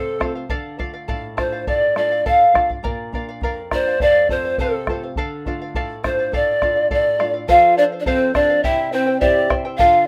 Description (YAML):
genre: andean folk, Andean ensemble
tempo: 103 BPM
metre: 2/4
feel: straight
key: D minor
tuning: A4 = 440 Hz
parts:
  - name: reedy pan flute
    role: melody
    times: 0.0-10.1 s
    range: A4 to F5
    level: -18 LUFS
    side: equal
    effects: plate reverb
  - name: breathy bright pan flute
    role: second line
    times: 0.0-10.1 s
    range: C4 to F5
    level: -29 LUFS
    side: equal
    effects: none
  - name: charango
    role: accompaniment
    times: 0.0-10.1 s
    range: E4 to G5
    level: -29 LUFS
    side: equal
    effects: none
  - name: nylon-string guitar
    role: accompaniment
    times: 0.0-10.1 s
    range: F2 to A4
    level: -34 LUFS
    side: equal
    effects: none
  - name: bombo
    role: percussion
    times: 0.2-9.9 s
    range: none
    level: -28 LUFS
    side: equal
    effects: none
room: moderate studio reverb, RT60 0.5 s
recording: rough home demo mix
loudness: -18 LUFS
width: mono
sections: 0.0-7.5 A section; 7.5-10.1 B section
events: none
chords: 0.0 F; 0.5 Dm; 2.8 Bb; 4.0 F; 5.2 Dm; 7.5 F; 8.6 C